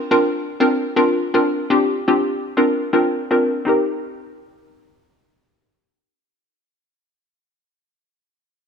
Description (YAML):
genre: pop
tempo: 122 BPM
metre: 4/4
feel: straight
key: C minor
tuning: A4 = 441 Hz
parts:
  - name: hollow square pluck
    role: accompaniment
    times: 0.1-7.2 s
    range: C4 to Bb4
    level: -16 LUFS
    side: left 1 dB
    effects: chorus
room: light reverb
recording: low-pass filter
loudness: -16 LUFS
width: side -6 dB against mid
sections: 0.0-3.7 A section; 3.7-7.6 B section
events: filter sweep 0.0-3.7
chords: 0.0 Bbadd9; 3.7 Cm7